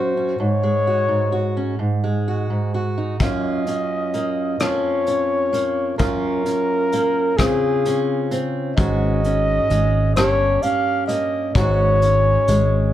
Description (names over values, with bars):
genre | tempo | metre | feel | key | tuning
acoustic folk-pop ballad | 43 BPM (dotted quarters) | 6/8 | straight | unclear | A4 = 439 Hz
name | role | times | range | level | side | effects
dark flugelhorn | melody | 0.0-12.9 s | Ab4 to F5 | -20 LUFS | left 1 dB | slapback echo
fingerpicked steel-string acoustic guitar | accompaniment | 0.0-12.9 s | F2 to G4 | -21 LUFS | right 1 dB | none
vintage brush drum kit | drums | 3.2-12.7 s | hi-hat, kick drum, rim click | -23 LUFS | left 2 dB | none
fingered electric bass | bass | 8.8-12.9 s | G1 to Ab1 | -20 LUFS | right 1 dB | none
room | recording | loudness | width
moderate studio reverb, RT60 0.5 s | heard from further back in the room | -17 LUFS | side -12 dB against mid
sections
0.0-3.2 A section; 3.2-12.9 B section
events
none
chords
0.4 Ab7sus4; 1.8 Ab5; 3.2 Gbmaj7; 4.6 Db6/F; 6.0 Gbmaj7; 7.4 Dbmaj7; 8.8 Ab7sus4; 10.2 Gm7b5; 11.6 Ab7sus4